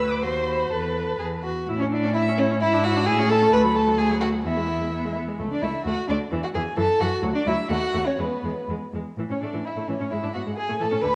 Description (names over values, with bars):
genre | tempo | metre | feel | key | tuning
quick classical-period movement for string quartet | 119-133 BPM | 2/4 | rubato | A major | A4 = 440 Hz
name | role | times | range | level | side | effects
dark violin | melody | 0.0-11.2 s | B4 to E6 | -31 LUFS | equal | none
warm violin | second line | 0.0-11.2 s | B3 to B4 | -28 LUFS | equal | none
rich viola | accompaniment | 0.0-11.1 s | D3 to B#4 | -32 LUFS | equal | none
warm cello | bass | 0.0-11.1 s | C#2 to A2 | -29 LUFS | equal | none
room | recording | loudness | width
moderate concert hall reverb, RT60 1.7 s | worn, warbling old tape, cassette tape, warbly pitch drift | -24 LUFS | mono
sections
0.0-1.7 A section; 1.7-9.2 B section; 9.2-11.2 C section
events
none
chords
0.2 D#m6; 0.7 Esus4; 1.7 A; 2.6 E7/G#; 3.1 A; 3.5 D; 4.4 E; 5.4 A; 5.9 D; 6.3 E; 6.8 F#m7; 7.2 D; 7.7 D#m7b5; 8.2 E; 9.2 A; 10.1 E/G#; 10.6 N.C.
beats
0.23 | 0.71 1.20 | 1.68 2.16 | 2.62 3.07 | 3.52 3.98 | 4.45 4.92 | 5.40 5.87 | 6.32 6.78 | 7.24 7.70 | 8.19 8.69 | 9.19 9.65 | 10.11 10.57 | 11.03